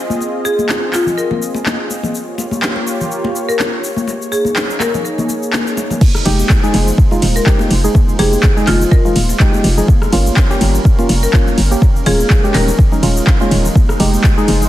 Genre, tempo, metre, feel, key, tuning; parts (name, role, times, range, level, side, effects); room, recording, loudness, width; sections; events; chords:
deep house; 124 BPM; 4/4; swing 56% on 16ths; F minor; A4 = 440 Hz
warm analog pad; sustained chords; 0.0-14.7 s; G3 to Eb5; -23 LUFS; right 1 dB; chorus, sidechain pumping
deep house drum kit; drums; 0.1-14.7 s; crash cymbal, handclaps, hi-hat, ride cymbal, rim click, shaker; -20 LUFS; equal; overdrive
congas; percussion; 0.1-14.7 s; -23 LUFS; left 3 dB
marimba with medium hard mallets; melody; 0.5-13.0 s; F4 to Bb4; -20 LUFS; left 1 dB; digital delay
electronic kick drum; drums; 6.0-14.3 s; -11 LUFS; equal; overdrive
percussive organ stab; stabs; 6.3-14.6 s; Ab3 to Ab4; -18 LUFS; right 1 dB; chorus, sidechain pumping, digital delay
hollow knocking FM bass; bass; 6.3-14.7 s; Eb1 to G1; -14 LUFS; equal; sidechain pumping
light reverb, digital ambience; dense, heavily limited modern master, vinyl crackle; -11 LUFS; side -14 dB against mid
0.0-6.0 A section; 6.0-14.7 B section
drop 6.0-14.7
0.0 Fm7; 2.1 Gm7b5; 4.1 Eb7sus4; 6.0 Fm7; 9.9 Gm7b5; 11.8 Eb7sus4; 13.8 Fm7